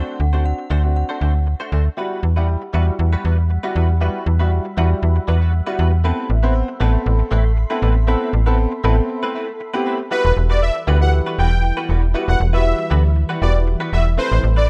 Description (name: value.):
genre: pop.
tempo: 118 BPM.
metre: 4/4.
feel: straight.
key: E minor.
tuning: A4 = 441 Hz.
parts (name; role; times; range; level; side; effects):
synth chime; melody; 0.0-1.7 s; F#5; -35 LUFS; equal; ensemble chorus, tremolo, digital delay.
warm grand piano; accompaniment; 0.0-14.6 s; G3 to C5; -27 LUFS; equal; none.
direct-recorded clean electric guitar; riff; 0.0-14.7 s; G3 to C5; -30 LUFS; equal; ensemble chorus.
slap-like FM bass; bass; 0.0-14.7 s; E1 to E2; -18 LUFS; equal; none.
shimmering ambient pad; sustained chords; 2.7-14.7 s; C3 to C6; -33 LUFS; equal; chorus, built-in reverb, phaser.
soft supersaw; melody; 10.1-14.7 s; B4 to G5; -24 LUFS; equal; none.
room: digital ambience.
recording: rough home demo mix.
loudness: -18 LUFS.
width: mono.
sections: 0.0-2.0 A section; 2.0-10.1 B section; 10.1-14.7 C section.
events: build-up 2.0-10.1; break 9.1-10.1; drop 10.1-14.7.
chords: 0.0 D7; 2.0 Emadd9; 6.0 Amadd9; 10.1 Emadd9; 14.2 Amadd9.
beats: 0.45 0.96 1.47 | 1.98 2.49 2.99 3.50 | 4.01 4.52 5.03 5.54 | 6.04 6.55 7.06 7.57 | 8.08 8.59 9.10 9.60 | 10.11 10.62 11.13 11.64 | 12.15 12.65 13.16 13.67 | 14.18 14.69.